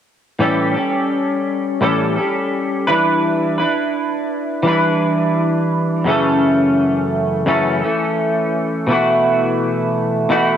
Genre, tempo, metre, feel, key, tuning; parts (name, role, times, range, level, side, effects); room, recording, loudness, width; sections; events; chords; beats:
indie pop; 85 BPM; 4/4; swing 55% on 16ths; E dorian; A4 = 441 Hz
clean electric guitar; accompaniment; 0.4-10.6 s; F#2 to B4; -15 LUFS; equal; lush chorus, vibrato effect
moderate lush hall reverb, RT60 2.6 s; home recording on cassette; -15 LUFS; side -9 dB against mid
0.4-10.6 A section
0.4 A7; 2.9 Em7; 6.1 F#m7; 8.9 B7sus4
| 0.41 1.11 1.82 2.52 | 3.23 3.94 4.65 5.35 | 6.06 6.77 7.47 8.18 | 8.89 9.59 10.30